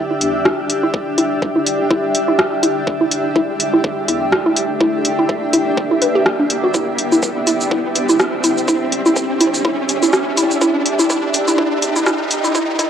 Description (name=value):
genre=minimal techno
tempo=124 BPM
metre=4/4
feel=swing 56% on 16ths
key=E minor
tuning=A4 = 440 Hz
part: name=round analog bass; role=bass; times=0.0-12.9 s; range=E1 to E2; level=-37 LUFS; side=equal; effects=none
part: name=riser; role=sound effects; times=1.1-12.9 s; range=none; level=-23 LUFS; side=equal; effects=none
part: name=granular cloud pad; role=texture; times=0.0-12.9 s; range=D4 to E5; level=-20 LUFS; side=equal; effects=built-in reverb, sidechain pumping, cassette tape
part: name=hollow square pluck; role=riff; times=0.1-12.8 s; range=D4 to B4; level=-18 LUFS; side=equal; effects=chorus, vintage 12-bit sampler grit, sidechain pumping, cassette tape, analog delay
part: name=booming analog drum machine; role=drums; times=0.2-12.9 s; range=cabasa, hi-hat, rim click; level=-18 LUFS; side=equal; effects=cassette tape
part: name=electronic kick drum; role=drums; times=0.5-12.9 s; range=none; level=-22 LUFS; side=equal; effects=overdrive, high-pass filter on kick, cassette tape
room=moderate spring reverb, RT60 2.0 s, digital ambience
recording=home recording on cassette, high-pass filter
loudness=-14 LUFS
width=side -8 dB against mid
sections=0.0-12.9 A section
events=build-up 0.0-12.9; filter sweep on synth arpeggio sound 0.0-12.9; riser 1.1-12.9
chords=0.0 Em7